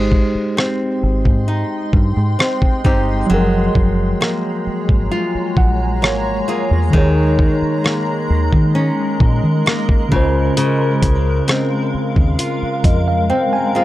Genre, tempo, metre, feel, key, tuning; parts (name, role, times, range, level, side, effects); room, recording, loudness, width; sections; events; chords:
contemporary R&B; 66 BPM; 4/4; straight; Ab major; A4 = 439 Hz
mellow tine electric piano; accompaniment; 0.0-13.8 s; Db3 to Ab5; -20 LUFS; equal; medium stereo tremolo
granular cloud pad; sustained chords; 1.0-13.8 s; Ab3 to C6; -22 LUFS; left 1 dB; built-in reverb
flamenco guitar; arpeggios; 0.0-13.8 s; Db3 to Ab4; -22 LUFS; left 1 dB; tape echo
deep dub fingered electric bass; bass; 0.0-13.3 s; Gb1 to Eb3; -17 LUFS; equal
dusty soul sampler-style drum kit; drums; 0.1-13.1 s; hi-hat, kick drum, rim click; -16 LUFS; equal
little or no reverb; dry, gritty hardware recording; -14 LUFS; side -15 dB against mid
0.0-13.8 A section
tine electric piano fill 5.1-6.9; silent gap 13.3-13.8
0.0 Abmaj7; 3.3 Gbmaj9; 6.9 Eb7sus4; 10.1 Dbmaj7